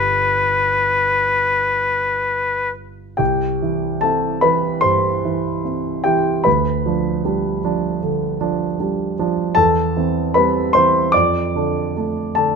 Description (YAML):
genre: classical, romantic duo for oboe and grand piano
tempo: 66-78 BPM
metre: 4/4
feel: rubato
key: C major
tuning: A4 = 439 Hz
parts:
  - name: warm oboe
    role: melody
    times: 0.0-2.7 s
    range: B4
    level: -16 LUFS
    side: left 3 dB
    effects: none
  - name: dark concert grand piano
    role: accompaniment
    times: 0.0-12.6 s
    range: G1 to D6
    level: -17 LUFS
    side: right 1 dB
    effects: none
room: light reverb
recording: none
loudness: -16 LUFS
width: side -5 dB against mid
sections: 0.0-3.2 A section; 3.2-12.6 B section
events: none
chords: 0.0 G; 3.2 C; 6.5 G7/D; 9.6 C/E; 11.1 Dm/F